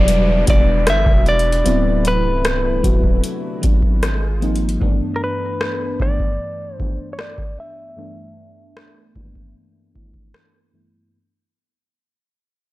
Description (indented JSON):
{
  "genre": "contemporary R&B",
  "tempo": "76 BPM",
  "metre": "4/4",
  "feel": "straight",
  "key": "unclear",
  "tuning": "A4 = 441 Hz",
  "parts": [
    { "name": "direct-recorded clean electric guitar", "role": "melody", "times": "0.0-10.3 s", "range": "A#4 to E5", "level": "-22 LUFS", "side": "equal", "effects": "low-pass filter, tape echo" },
    { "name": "FM electric piano with soft pad layer", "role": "accompaniment", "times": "0.0-11.2 s", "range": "G2 to F#4", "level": "-23 LUFS", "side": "left 1 dB", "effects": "chorus, low-pass filter" },
    { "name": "warm analog pad", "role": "sustained chords", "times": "0.0-4.8 s", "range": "C3 to B4", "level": "-30 LUFS", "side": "left 1 dB", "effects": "chorus, sidechain pumping, low-pass filter" },
    { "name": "long sustained 808-style bass", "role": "bass", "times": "0.0-4.8 s", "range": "C1 to G#1", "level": "-19 LUFS", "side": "equal", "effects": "none" },
    { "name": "downlifter", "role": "sound effects", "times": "0.0-4.8 s", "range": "none", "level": "-31 LUFS", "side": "equal", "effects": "none" },
    { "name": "booming analog drum machine", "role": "drums", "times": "0.1-10.5 s", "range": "hi-hat, kick drum, rim click", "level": "-18 LUFS", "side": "equal", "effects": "none" }
  ],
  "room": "little or no reverb",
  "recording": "dry, gritty hardware recording",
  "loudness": "-15 LUFS",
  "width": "side -17 dB against mid",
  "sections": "0.0-11.1 A section",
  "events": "fade-out 0.0-11.1; filter sweep 0.0-11.1",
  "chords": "0.0 Em7; 1.7 D13; 4.0 G#6; 4.8 G6",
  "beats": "0.08 0.87 | 1.66 2.44 3.23 4.02 | 4.81 5.60 6.39 7.18 | 7.97 8.76 9.55 10.34"
}